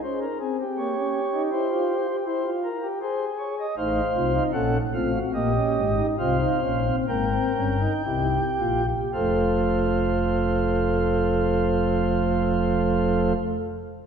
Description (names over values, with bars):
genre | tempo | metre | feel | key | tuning
classical, baroque-style 4-part fugue for pipe organ | 52-81 BPM | 3/4 | straight | unclear | A4 = 442 Hz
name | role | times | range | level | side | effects
pipe organ, flutes | solo | 0.0-13.3 s | F1 to G5 | -22 LUFS | equal | none
room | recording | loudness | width
wet concert hall reverb, RT60 2.0 s | minimal, uncompressed stereo recording | -21 LUFS | side -7 dB against mid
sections
0.0-9.1 A section; 9.1-12.6 B section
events
slowing down 2.6-9.1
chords
0.0 Fm (rootless); 0.8 Gdim/Bb; 1.5 C7/E; 3.0 Abadd11; 3.8 F7/A; 5.3 Bbm; 6.2 C7sus4; 8.1 C7; 9.1 F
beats
0.03 0.78 | 1.53 2.27 3.01 | 3.77 4.54 5.34 | 6.18 7.08 8.06 | 9.14 10.29 11.43